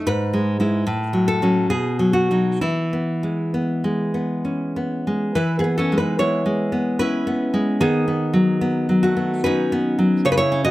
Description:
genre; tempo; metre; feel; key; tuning
romantic piece for solo classical guitar; 63-78 BPM; 3/4; rubato; E major; A4 = 440 Hz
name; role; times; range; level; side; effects
nylon-string guitar; solo; 0.0-10.7 s; G#2 to D#5; -18 LUFS; equal; none
room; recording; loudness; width
light reverb; close, detailed microphones; -18 LUFS; side -16 dB against mid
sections
0.0-5.4 A section; 5.4-10.7 A section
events
none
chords
0.1 E/G#; 0.9 F#m/A; 1.7 B; 2.6 E; 7.8 B/D#

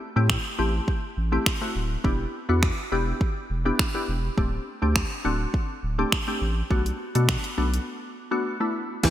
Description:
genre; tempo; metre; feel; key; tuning
dance-pop; 103 BPM; 4/4; straight; unclear; A4 = 442 Hz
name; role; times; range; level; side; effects
glassy wavetable pluck; accompaniment; 0.2-9.1 s; A3 to G4; -28 LUFS; left 1 dB; chorus, sidechain pumping
saturated sub bass; bass; 0.2-9.1 s; D1 to B2; -25 LUFS; equal; sidechain pumping
deep house drum kit; drums; 0.3-9.1 s; crash cymbal, finger snaps, hi-hat, kick drum, snare drum; -26 LUFS; equal; gated reverb
wide unison pluck; arpeggios; 9.0-9.1 s; E3; -22 LUFS; right 2 dB; sidechain pumping
room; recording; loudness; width
light reverb, digital ambience; bright 1980s-style digital production; -23 LUFS; side -12 dB against mid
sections
0.0-9.0 A section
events
break 7.9-9.0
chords
0.0 Am7; 2.0 Em7; 4.4 D7sus4; 6.7 Bm7

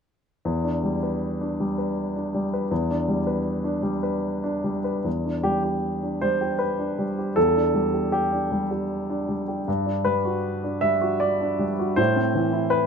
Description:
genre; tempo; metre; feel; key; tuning
neoclassical minimalist piano; 78 BPM; 3/4; rubato; E minor; A4 = 440 Hz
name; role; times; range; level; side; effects
warm baby grand piano; solo; 0.5-12.9 s; E2 to E5; -22 LUFS; equal; none
room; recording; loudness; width
moderate plate reverb, RT60 2.8 s; minimal, uncompressed stereo recording; -22 LUFS; side -6 dB against mid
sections
0.4-5.1 A section; 5.1-12.9 B section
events
none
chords
0.4 Em7; 9.7 Gmaj7; 12.0 Amadd9

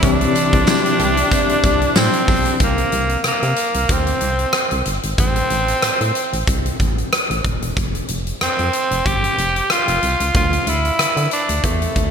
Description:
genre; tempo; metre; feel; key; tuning
1980s-style pop; 93 BPM; 4/4; swing 55% on 16ths; unclear; A4 = 440 Hz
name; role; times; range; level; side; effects
raspy tenor saxophone; melody; 0.0-12.1 s; A3 to G4; -19 LUFS; equal; ping-pong delay
FM electric piano with tremolo; accompaniment; 0.0-2.6 s; C3 to G4; -22 LUFS; left 6 dB; none
phased analog pad; sustained chords; 0.0-2.6 s; G4 to C6; -26 LUFS; equal; phaser, chorus
twelve-string electric guitar; riff; 0.0-3.2 s; E3 to G4; -28 LUFS; right 4 dB; none
funky polysynth comp; stabs; 0.0-1.3 s; E3 to G4; -29 LUFS; right 3 dB; none
solid FM bass; bass; 0.0-12.1 s; Eb1 to D3; -22 LUFS; equal; none
huge arena drum kit; drums; 0.0-12.1 s; hi-hat, kick drum, rim click, snare drum, tambourine; -19 LUFS; equal; none
tambourine; percussion; 0.0-2.5 s; none; -34 LUFS; right 7 dB; none
room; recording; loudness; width
moderate lush hall reverb, RT60 2.6 s; bright 1980s-style digital production; -15 LUFS; side -7 dB against mid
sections
0.0-2.6 A section; 2.6-12.1 B section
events
band accent 0.0-2.6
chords
0.0 Cadd9; 2.6 C5; 5.2 Am; 7.8 Fsus2; 10.3 Dsus2

